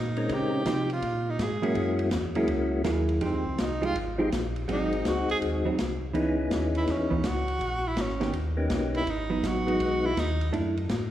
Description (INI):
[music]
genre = soul jazz organ trio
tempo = 164 BPM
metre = 4/4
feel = swing 66% on 8ths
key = C# minor from 6.1 s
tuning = A4 = 440 Hz
[part]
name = bright tenor saxophone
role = melody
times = 0.0-10.5 s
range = C4 to Ab4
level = -32 LUFS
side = right 2 dB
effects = none
[part]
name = mellow tonewheel organ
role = bass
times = 0.0-11.1 s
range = Ab1 to Db3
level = -31 LUFS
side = equal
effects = slow rotary speaker
[part]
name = percussive tonewheel organ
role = melody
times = 0.2-10.1 s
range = F#3 to Bb4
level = -30 LUFS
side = left 2 dB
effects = slow rotary speaker
[part]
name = open jazz drum kit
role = drums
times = 0.2-11.0 s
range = hi-hat, kick drum, ride cymbal, snare drum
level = -34 LUFS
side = left 1 dB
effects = none
[part]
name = vintage hollow-body jazz guitar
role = accompaniment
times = 0.7-10.7 s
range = D#3 to Ab4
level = -31 LUFS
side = right 3 dB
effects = none
[sound]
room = moderate concert hall reverb, RT60 2.3 s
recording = recorded in a church or concert hall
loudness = -25 LUFS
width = side -12 dB against mid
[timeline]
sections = 0.0-6.1 A section; 6.1-11.1 A section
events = tenor saxophone solo 0.0-11.1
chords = 0.3 Dbmaj9; 1.8 Gb9; 3.2 Fm9; 4.7 Ab7; 6.1 C#m9; 7.6 C#m13; 8.3 D#7b13; 9.1 G#m7; 10.5 F#m7